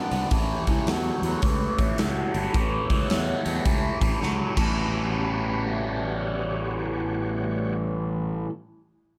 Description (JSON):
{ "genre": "blues rock power trio and southern rock", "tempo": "108 BPM", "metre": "4/4", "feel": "swing 64% on 8ths", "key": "A mixolydian", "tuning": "A4 = 440 Hz", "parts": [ { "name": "overdriven tonewheel organ", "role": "sustained chords", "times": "0.0-7.8 s", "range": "A3 to D5", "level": "-38 LUFS", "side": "equal", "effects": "slow rotary speaker, chorus vibrato" }, { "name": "cranked stack guitar", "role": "riff", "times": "0.0-8.5 s", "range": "A2 to A4", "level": "-30 LUFS", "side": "equal", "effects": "overdrive, phaser" }, { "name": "fuzz fingered electric bass", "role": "bass", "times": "0.1-8.5 s", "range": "G1 to E2", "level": "-32 LUFS", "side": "equal", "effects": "overdrive" }, { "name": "big rock drum kit", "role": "drums", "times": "0.1-4.7 s", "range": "crash cymbal, hi-hat, kick drum, snare drum", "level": "-29 LUFS", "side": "equal", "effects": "none" } ], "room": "light reverb, studio reverb", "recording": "none", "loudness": "-26 LUFS", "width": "mono", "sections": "0.0-4.8 A section; 4.8-7.0 B section", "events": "drum fill 4.2-4.8", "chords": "0.3 A7; 4.5 A13" }